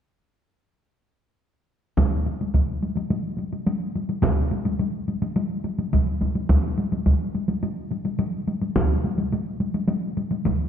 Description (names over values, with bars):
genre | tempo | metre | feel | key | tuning
japanese traditional, taiko drum ensemble | 106 BPM | 4/4 | straight | none | none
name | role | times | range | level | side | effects
taiko ensemble | percussion | 2.0-10.6 s | none | -24 LUFS | left 2 dB | none
taiko ensemble | percussion | 2.0-10.6 s | none | -22 LUFS | right 1 dB | none
room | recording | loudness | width
wet recital hall reverb, RT60 1.4 s | dark, warm production | -22 LUFS | side -8 dB against mid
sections
2.0-10.7 A section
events
none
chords
none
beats
| 1.98 2.54 3.11 3.67 | 4.24 4.80 5.37 5.94 | 6.50 7.07 7.63 8.20 | 8.77 9.33 9.90 10.46